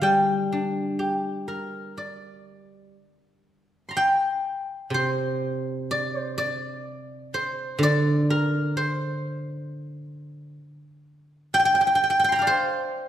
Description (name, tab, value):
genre	chinese traditional, Chinese solo plucked strings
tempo	63 BPM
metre	4/4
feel	rubato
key	G yu mode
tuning	A4 = 442 Hz
part	guzheng	solo	0.0-13.1 s	C3 to C6	-22 LUFS	equal	none
room	moderate scoring stage reverb, RT60 1.4 s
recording	recorded in a church or concert hall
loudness	-22 LUFS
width	side -11 dB against mid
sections	0.0-3.9 A section; 3.9-13.1 B section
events	none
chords	none